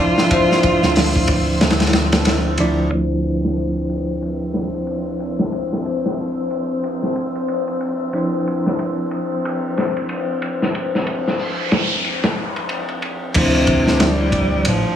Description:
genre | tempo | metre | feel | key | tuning
trip hop | 92 BPM | 4/4 | swing 60% on 16ths | D minor | A4 = 439 Hz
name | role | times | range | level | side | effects
bright cello | melody | 0.0-2.3, 13.4-15.0 s | C3 to F4 | -20 LUFS | right 1 dB | vintage 12-bit sampler grit, tape echo
bell-like tine electric piano | accompaniment | 0.0-15.0 s | F3 to E5 | -22 LUFS | equal | harmonic tremolo, tape echo
deep dark ambient pad | sustained chords | 0.0-13.3 s | C5 to E6 | -27 LUFS | left 2 dB | chorus, built-in reverb
crunchy breakbeat drum kit | drums | 0.2-14.8 s | crash cymbal, hi-hat, kick drum, ride cymbal, snare drum | -21 LUFS | equal | low-pass filter on kick, low-pass filter on cymbals, low-pass filter on hats, low-pass filter on snare, low-pass filter on room
hollow-body short-scale fingered electric bass | bass | 0.8-14.8 s | A1 to D2 | -22 LUFS | right 1 dB | none
downlifter and noise sweep | sound effects | 3.0-13.4 s | none | -30 LUFS | equal | none
wind-like tuned noise texture | texture | 4.3-13.4 s | C4 to C5 | -28 LUFS | left 2 dB | built-in reverb
room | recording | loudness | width
light reverb | low-pass filter, small room ambience | -17 LUFS | side -9 dB against mid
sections
0.0-2.9 A section; 2.9-13.4 B section; 13.4-15.0 A section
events
filter sweep 2.9-13.4; noise sweep 11.1-13.4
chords
0.0 Dm9

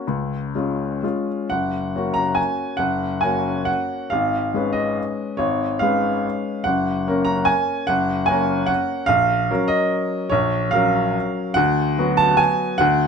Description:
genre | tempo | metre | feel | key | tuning
classical, piano waltz | 120-152 BPM | 3/4 | rubato | F# major | A4 = 440 Hz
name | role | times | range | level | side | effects
clear upright piano | solo | 0.0-13.1 s | F#1 to A#5 | -18 LUFS | equal | none
room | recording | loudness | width
moderate large studio reverb, RT60 1.2 s | close, detailed microphones | -18 LUFS | side -6 dB against mid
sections
0.0-1.5 A section; 1.5-13.1 B section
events
none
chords
0.1 C#; 1.5 F#; 4.1 C#7/G#; 6.7 F#; 9.1 F#/A#; 11.6 Bm/D

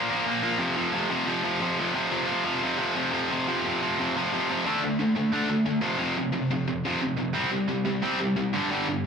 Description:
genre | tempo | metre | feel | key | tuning
punk | 178 BPM | 4/4 | straight | F major | A4 = 439 Hz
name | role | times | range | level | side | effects
tight distorted guitar | solo | 0.0-9.0 s | F2 to D4 | -24 LUFS | equal | distortion, slapback echo, ping-pong delay
room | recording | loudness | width
light reverb | live gig heard through the venue's PA, club reverb | -24 LUFS | side -6 dB against mid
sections
0.0-2.0 A section; 2.0-4.7 B section; 4.7-9.1 C section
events
none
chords
0.0 Bb5; 0.6 F5; 4.7 D5; 5.8 F5; 7.4 C5; 8.5 G5

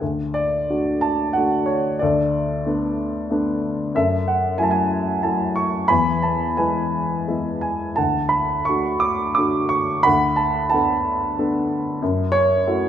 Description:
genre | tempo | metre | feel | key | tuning
classical, lyrical solo piano | 85-97 BPM | 3/4 | rubato | unclear | A4 = 443 Hz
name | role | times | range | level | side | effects
warm baby grand piano | solo | 0.0-12.9 s | D2 to D6 | -18 LUFS | equal | none
room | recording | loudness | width
wet recital hall reverb, RT60 1.5 s | recorded in a church or concert hall | -18 LUFS | side -9 dB against mid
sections
0.0-12.9 A section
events
none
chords
0.0 D; 2.0 Bm7/D; 3.9 F#m7; 5.9 E; 8.0 D; 10.1 Bm7/D; 12.0 F#m7

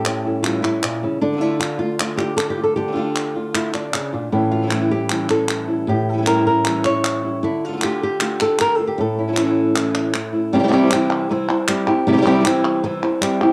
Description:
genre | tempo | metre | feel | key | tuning
flamenco | 155 BPM | 4/4 | straight | unclear | A4 = 440 Hz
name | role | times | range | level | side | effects
flamenco guitar | melody | 0.0-13.5 s | A2 to C#5 | -21 LUFS | equal | cassette tape
flamenco guitar | stabs | 0.0-13.5 s | A2 to F4 | -25 LUFS | equal | none
palmas hand claps | percussion | 0.1-13.5 s | none | -27 LUFS | equal | none
room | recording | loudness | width
wet studio reverb, RT60 0.6 s | home recording on cassette | -19 LUFS | mono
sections
0.0-10.5 A section; 10.5-13.5 B section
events
none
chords
0.0 A7; 1.2 Dm; 4.3 A7; 7.4 Dm; 9.0 A; 10.5 C

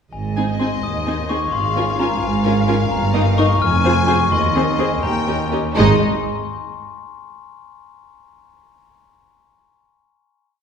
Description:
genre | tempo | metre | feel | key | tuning
cinematic, playful, whimsical film cue | 85 BPM (dotted quarters) | 6/8 | uneven beats | Ab major | A4 = 440 Hz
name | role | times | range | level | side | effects
glockenspiel with soft plastic mallets | melody | 0.1-6.0 s | Ab5 to F6 | -23 LUFS | left 6 dB | none
warm studio violin section | melody | 0.1-6.0 s | Eb5 to Ab5 | -25 LUFS | left 2 dB | none
dark studio double bass section | bass | 0.1-6.0 s | F1 to Eb2 | -23 LUFS | right 2 dB | none
warm studio cello section | bass | 0.1-6.0 s | Eb2 to Ab2 | -22 LUFS | right 2 dB | none
warm studio violin section | second line | 0.4-6.0 s | Eb4 to Ab5 | -25 LUFS | left 2 dB | none
rich studio viola section | accompaniment | 0.4-6.0 s | Ab3 to Ab4 | -23 LUFS | right 1 dB | none
room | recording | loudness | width
wet scoring stage reverb, RT60 1.6 s | heard from further back in the room | -15 LUFS | side -7 dB against mid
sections
0.1-5.8 A section; 5.8-7.2 final chord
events
none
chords
0.1 Ab; 1.5 Bbm7/Ab; 2.9 Eb/G; 3.6 Fm; 4.3 Ab/Eb; 5.0 Eb7; 5.8 Ab5

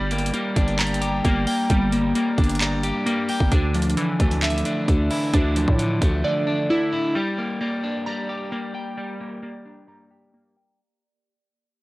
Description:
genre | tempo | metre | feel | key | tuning
hip hop, trap | 132 BPM | 4/4 | half-time | unclear | A4 = 441 Hz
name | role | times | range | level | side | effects
electric guitar at the edge of break-up | accompaniment | 0.0-10.8 s | D3 to G5 | -25 LUFS | left 1 dB | none
glassy digital keys | arpeggios | 0.0-10.8 s | E3 to Bb5 | -26 LUFS | right 1 dB | chorus, analog delay
growling 808-style bass | bass | 0.0-6.2 s | G1 to A2 | -24 LUFS | equal | none
trap drum kit | drums | 0.1-6.1 s | handclaps, hi-hat, kick drum | -22 LUFS | equal | none
glassy FM pad | sustained chords | 7.7-10.8 s | Bb3 to D5 | -38 LUFS | right 1 dB | ensemble chorus, built-in reverb
room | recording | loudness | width
little or no reverb | dry, gritty hardware recording, cassette tape, low-pass filter | -20 LUFS | side -20 dB against mid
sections
0.0-7.2 A section; 7.2-10.8 B section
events
drums muted 6.2-7.2; fade-out 7.2-10.8; filter sweep 7.2-10.8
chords
0.0 Gm; 3.5 Dmadd9; 7.2 Gm

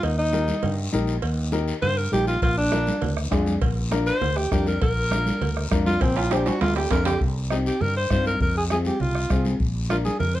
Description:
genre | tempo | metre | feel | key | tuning
latin, cumbia | 201 BPM | 4/4 | straight | unclear | A4 = 440 Hz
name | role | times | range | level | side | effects
breathy alto saxophone | melody | 0.0-10.4 s | C4 to C5 | -25 LUFS | equal | none
fretless electric bass | bass | 0.0-10.4 s | Bb1 to G2 | -25 LUFS | equal | none
congas | percussion | 0.0-10.4 s | none | -30 LUFS | right 2 dB | none
cowbell and timbales | percussion | 0.0-7.1 s | none | -31 LUFS | right 6 dB | none
guiro | percussion | 0.0-10.4 s | none | -38 LUFS | left 4 dB | none
dark upright piano | accompaniment | 0.3-10.1 s | C4 to C5 | -28 LUFS | left 4 dB | none
bombo | percussion | 2.4-10.1 s | none | -26 LUFS | equal | none
room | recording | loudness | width
moderate studio reverb, RT60 0.5 s | dark, warm production | -20 LUFS | side -14 dB against mid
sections
0.0-7.2 A section; 7.2-10.4 B section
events
alto saxophone solo 0.0-7.2; drum fill 6.0-7.2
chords
0.0 Eb; 2.4 Bb; 7.2 Cm; 8.4 Fm; 9.6 Bb

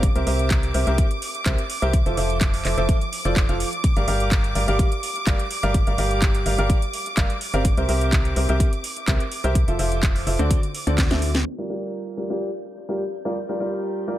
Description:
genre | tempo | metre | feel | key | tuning
piano house | 126 BPM | 4/4 | straight | G dorian | A4 = 440 Hz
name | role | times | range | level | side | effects
dark studio violin section | sustained chords | 0.0-14.2 s | D6 to G6 | -31 LUFS | right 1 dB | sidechain pumping, low-pass filter
organ-like FM bass | bass | 0.0-11.4 s | F1 to D2 | -23 LUFS | equal | tube saturation, sidechain pumping
electronic kick drum | drums | 0.0-11.1 s | none | -20 LUFS | equal | none
house drum kit | drums | 0.0-11.4 s | handclaps, hi-hat, snare drum | -28 LUFS | right 1 dB | none
clear upright piano | riff | 0.2-14.2 s | D3 to F5 | -26 LUFS | equal | sidechain pumping, low-pass filter, tape echo
room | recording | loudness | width
little or no reverb | low-pass filter | -19 LUFS | side -14 dB against mid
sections
0.0-11.5 A section; 11.5-14.2 B section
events
drum fill 11.0-11.5; filter sweep on violin section 11.5-14.2; filter sweep 11.5-14.2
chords
0.0 C7; 1.9 Fmaj7; 3.8 Gm7; 7.6 C7; 9.6 Fmaj7; 10.5 D7; 11.5 Gm7

